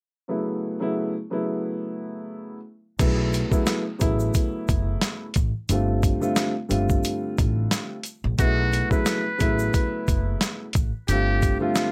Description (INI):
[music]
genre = hip hop, boom-bap hip-hop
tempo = 89 BPM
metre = 4/4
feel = swing 56% on 16ths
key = B minor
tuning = A4 = 438 Hz
[part]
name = dark baby grand piano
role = accompaniment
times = 0.3-11.9 s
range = C#3 to F4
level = -28 LUFS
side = equal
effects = cassette tape, high-pass filter, low-pass filter
[part]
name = upright bass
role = bass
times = 3.0-11.5 s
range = F#1 to B1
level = -28 LUFS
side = equal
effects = none
[part]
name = boom bap sampler-style drum kit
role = drums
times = 3.0-11.9 s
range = crash cymbal, hi-hat, kick drum, snare drum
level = -26 LUFS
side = equal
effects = none
[part]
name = egg shaker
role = percussion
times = 3.0-11.9 s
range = none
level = -42 LUFS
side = equal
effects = none
[part]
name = trumpet with metal mute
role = melody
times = 8.4-11.9 s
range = F4 to B4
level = -30 LUFS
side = equal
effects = high-pass filter, low-pass filter, tape echo
[sound]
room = light reverb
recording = none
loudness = -24 LUFS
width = mono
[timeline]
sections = 0.3-3.0 A section; 3.0-11.9 B section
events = none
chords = 0.3 B9sus4; 5.7 G9sus4; 8.4 B9sus4; 11.1 G9sus4